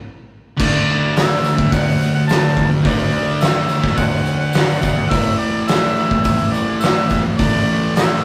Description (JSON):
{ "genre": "garage rock duo or trio", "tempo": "106 BPM", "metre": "4/4", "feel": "straight", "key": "unclear", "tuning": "A4 = 444 Hz", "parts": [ { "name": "clear harmonica", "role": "melody", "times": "0.6-8.2 s", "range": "D5 to A5", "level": "-24 LUFS", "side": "equal", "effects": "overdrive" }, { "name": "fuzz guitar", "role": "riff", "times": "0.6-8.2 s", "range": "A2 to D4", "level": "-20 LUFS", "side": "equal", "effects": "distortion" }, { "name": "oversized low-tuned drum kit", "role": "drums", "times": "0.6-8.1 s", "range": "crash cymbal, hi-hat, kick drum, snare drum", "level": "-20 LUFS", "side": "equal", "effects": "none" }, { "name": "tambourine", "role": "percussion", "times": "0.9-8.1 s", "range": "none", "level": "-39 LUFS", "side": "equal", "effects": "none" } ], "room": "light reverb", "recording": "rough rehearsal-room recording, tube saturation", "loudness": "-16 LUFS", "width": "mono", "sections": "0.6-8.2 A section", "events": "stop 0.0-0.6", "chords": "0.0 N.C.; 0.6 D; 5.1 A5" }